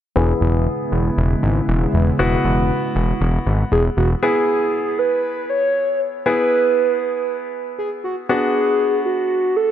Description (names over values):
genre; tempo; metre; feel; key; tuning
pop; 118 BPM; 4/4; straight; unclear; A4 = 440 Hz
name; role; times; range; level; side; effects
clear concert grand piano; accompaniment; 0.2-9.7 s; B3 to G#4; -22 LUFS; left 2 dB; low-pass filter
chorused pulse-width pad; sustained chords; 0.2-4.2 s; C#3 to E4; -24 LUFS; equal; low-pass filter
fat analog bass; bass; 0.2-4.1 s; E1 to G#1; -18 LUFS; equal; none
hollow clarinet-like synth lead; melody; 3.7-9.7 s; F#4 to C#5; -18 LUFS; right 2 dB; chorus, phaser, digital delay
room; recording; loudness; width
moderate lush hall reverb, RT60 2.6 s; none; -16 LUFS; side -10 dB against mid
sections
0.2-4.2 A section; 4.2-9.7 B section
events
filter sweep 0.2-4.2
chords
0.2 E6; 4.2 E; 8.3 Bm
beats
| 0.16 0.67 1.17 1.68 | 2.19 2.70 3.21 3.72 | 4.22 4.73 5.24 5.75 | 6.26 6.77 7.28 7.79 | 8.29 8.80 9.31